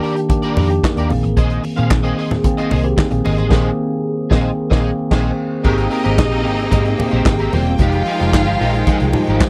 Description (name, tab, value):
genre	disco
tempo	112 BPM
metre	4/4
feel	straight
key	unclear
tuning	A4 = 440 Hz
part	electric guitar at the edge of break-up	accompaniment	0.0-9.5 s	Ab3 to F5	-27 LUFS	equal	ensemble chorus
part	tine electric piano	accompaniment	0.0-9.5 s	D3 to Bb4	-21 LUFS	equal	phaser
part	vintage drum kit	drums	0.0-9.5 s	crash cymbal, handclaps, hi-hat, kick drum, snare drum	-20 LUFS	equal	none
part	congas	percussion	0.3-9.5 s	none	-27 LUFS	equal	none
part	vintage muted fingered electric bass	bass	0.6-9.4 s	Fb1 to Bb2	-21 LUFS	equal	none
part	clear studio string section	second line	5.6-9.4 s	Eb4 to F5	-26 LUFS	equal	none
part	bright studio string section	sustained chords	5.6-9.5 s	C3 to G5	-28 LUFS	equal	none
room	little or no reverb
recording	none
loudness	-16 LUFS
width	mono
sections	0.0-5.7 A section; 5.7-9.5 B section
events	band accent 3.5-5.7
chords	0.0 Ebmaj7; 1.1 Bb9sus4; 5.7 Abmaj9; 7.8 Fm9